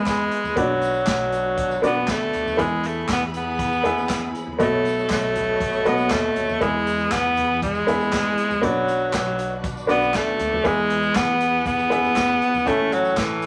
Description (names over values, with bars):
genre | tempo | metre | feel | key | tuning
piano-driven pop | 119 BPM | 4/4 | straight | E mixolydian | A4 = 440 Hz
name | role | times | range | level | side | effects
edgy alto saxophone | melody | 0.0-13.5 s | E3 to B3 | -24 LUFS | equal | none
warm baby grand piano | accompaniment | 0.0-13.5 s | A2 to E5 | -28 LUFS | equal | none
warm studio string section | sustained chords | 0.0-13.5 s | E3 to B5 | -36 LUFS | equal | none
upright bass | bass | 0.0-13.5 s | A1 to E2 | -37 LUFS | equal | none
unplugged drum kit | drums | 0.1-13.5 s | handclaps, hi-hat, kick drum, snare drum, toms | -30 LUFS | equal | none
tambourine | percussion | 0.1-13.5 s | none | -48 LUFS | equal | none
room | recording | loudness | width
wet studio reverb, RT60 0.7 s | vinyl crackle | -21 LUFS | mono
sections
0.0-13.5 A section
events
none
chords
0.0 E; 0.6 Bm; 2.6 E; 4.6 B7; 6.6 E; 8.6 Bm; 10.6 E; 12.7 A